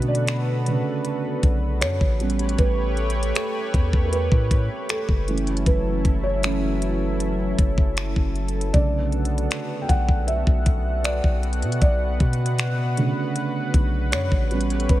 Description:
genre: contemporary R&B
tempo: 78 BPM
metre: 4/4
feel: straight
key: B minor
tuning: A4 = 440 Hz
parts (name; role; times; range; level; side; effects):
- felt-muted upright piano; accompaniment; 0.0-15.0 s; C#3 to G5; -26 LUFS; right 3 dB; none
- lush unison pad; sustained chords; 0.0-15.0 s; F#3 to F#5; -29 LUFS; left 1 dB; chorus, sidechain pumping
- long sustained 808-style bass; bass; 0.0-15.0 s; F#1 to B2; -24 LUFS; equal; none
- trap drum kit; drums; 0.0-15.0 s; finger snaps, hi-hat, kick drum; -21 LUFS; equal; vintage 12-bit sampler grit
room: little or no reverb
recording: none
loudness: -20 LUFS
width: side -15 dB against mid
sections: 0.0-15.0 A section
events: felt piano solo 0.0-15.0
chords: 0.0 Bm7; 2.2 A9; 5.3 F#m7; 8.7 Bm7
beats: 0.28 1.05 1.82 | 2.59 3.35 4.12 4.89 | 5.66 6.43 7.20 7.97 | 8.74 9.51 10.28 11.05 | 11.82 12.59 13.36 14.12 | 14.89

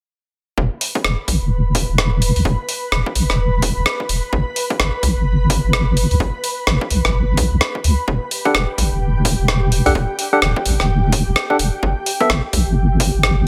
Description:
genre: UK garage, two-step garage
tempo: 128 BPM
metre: 4/4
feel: swing 61% on 16ths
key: E minor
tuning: A4 = 439 Hz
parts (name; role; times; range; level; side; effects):
- ethereal airy pad; sustained chords; 1.3-13.5 s; G4 to B5; -29 LUFS; equal; ensemble chorus, built-in reverb, sidechain pumping
- deep soft wobble bass; bass; 0.6-13.5 s; E1 to D2; -19 LUFS; equal; chorus, tube saturation
- electronic kick drum; drums; 0.6-13.1 s; none; -26 LUFS; equal; overdrive, high-pass filter on kick, small room ambience, high-pass filter on room
- breakbeat sampler-style drum kit; drums; 0.8-13.3 s; hi-hat, rim click; -23 LUFS; equal; small room ambience
- barky tine electric piano; stabs; 8.5-12.3 s; B3 to F#5; -21 LUFS; equal; fast tremolo, delay
room: little or no reverb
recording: none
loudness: -18 LUFS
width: mono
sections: 0.6-13.5 A section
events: filter sweep on wobble bass 0.6-13.5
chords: 0.6 E5; 4.3 G; 8.1 Emadd11; 11.8 G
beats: | 0.58 1.05 1.51 1.98 | 2.45 2.92 3.39 3.86 | 4.33 4.80 5.26 5.73 | 6.20 6.67 7.14 7.61 | 8.08 8.55 9.02 9.48 | 9.95 10.42 10.89 11.36 | 11.83 12.30 12.77 13.23

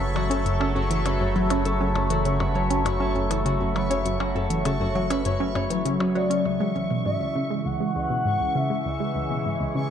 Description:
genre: ambient, sequencer-driven space music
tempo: 100 BPM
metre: 4/4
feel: straight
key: F# minor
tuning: A4 = 439 Hz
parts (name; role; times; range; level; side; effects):
- sweeping resonant pad; sustained chords; 0.0-9.9 s; C#3 to E5; -28 LUFS; right 1 dB; chorus, phaser
- concert harp; arpeggios; 0.0-8.6 s; F#3 to C#5; -29 LUFS; left 4 dB; auto-pan, tape echo
- tight sequenced synth; riff; 0.0-9.9 s; C#2 to C#4; -27 LUFS; equal; chorus, tape echo
- round analog bass; bass; 0.0-6.4 s; F#1; -28 LUFS; equal; none
- bubbling stepped-filter texture; texture; 0.0-9.9 s; C#6; -38 LUFS; left 1 dB; chorus, built-in reverb
- electronic percussion blips and hi-hat; percussion; 0.2-6.4 s; none; -36 LUFS; left 3 dB; tape echo
- expressive synth lead; melody; 6.2-9.9 s; D5 to F#5; -28 LUFS; equal; lush chorus, tape echo
room: wet spring reverb, RT60 2.6 s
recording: echo-heavy mix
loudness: -22 LUFS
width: side -8 dB against mid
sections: 0.0-6.5 A section; 6.5-9.9 B section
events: none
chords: 0.0 F#m; 6.5 C#m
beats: 0.46 1.06 | 1.66 2.26 2.86 3.46 | 4.06 4.66 5.26 5.86 | 6.46 7.06 7.66 8.26 | 8.86 9.46

